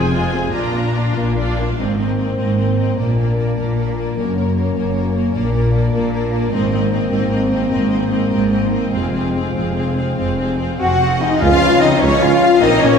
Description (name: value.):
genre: cinematic, heroic adventure film score.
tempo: 100 BPM (dotted quarters).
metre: 12/8.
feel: straight.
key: Ab lydian.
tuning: A4 = 440 Hz.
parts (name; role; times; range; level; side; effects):
rich studio violin section; melody; 0.0-13.0 s; Db5 to Bb5; -29 LUFS; left 4 dB; none.
warm symphonic violin section; second line; 0.0-13.0 s; D4 to Gb5; -25 LUFS; left 3 dB; none.
rich symphonic viola section; accompaniment; 0.0-13.0 s; Ab3 to Ab4; -23 LUFS; equal; none.
rich symphonic cello section; bass; 0.0-13.0 s; F2 to Gb4; -20 LUFS; right 1 dB; none.
rich symphonic double bass section; bass; 0.0-12.9 s; F1 to Db2; -21 LUFS; equal; none.
mellow French horn section; sustained chords; 1.8-13.0 s; Ab3 to Gb4; -21 LUFS; left 4 dB; none.
cymbal swell and tam-tam; percussion; 8.9-13.0 s; none; -27 LUFS; left 2 dB; none.
clear clarinet; second line; 10.8-13.0 s; Ab3 to Db4; -23 LUFS; left 2 dB; none.
mellow hollow large flute ensemble; second line; 10.8-13.0 s; Db5 to Gb5; -22 LUFS; left 3 dB; none.
mellow trombone section; sustained chords; 11.4-13.0 s; F3 to Db4; -22 LUFS; left 1 dB; none.
warm tuba; bass; 11.4-12.9 s; Bb1 to Db2; -21 LUFS; right 3 dB; none.
room: wet scoring stage reverb, RT60 1.6 s.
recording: heard from further back in the room.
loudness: -14 LUFS.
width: side -6 dB against mid.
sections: 0.0-1.8 A section; 1.8-11.4 B section; 11.4-13.0 C section.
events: band accent 11.4-11.8.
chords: 0.0 Fm; 0.5 Bb; 1.8 Abadd9; 3.0 Bb; 4.2 Gb; 5.3 Bb; 6.5 Abadd9; 8.9 Fm; 11.4 Db.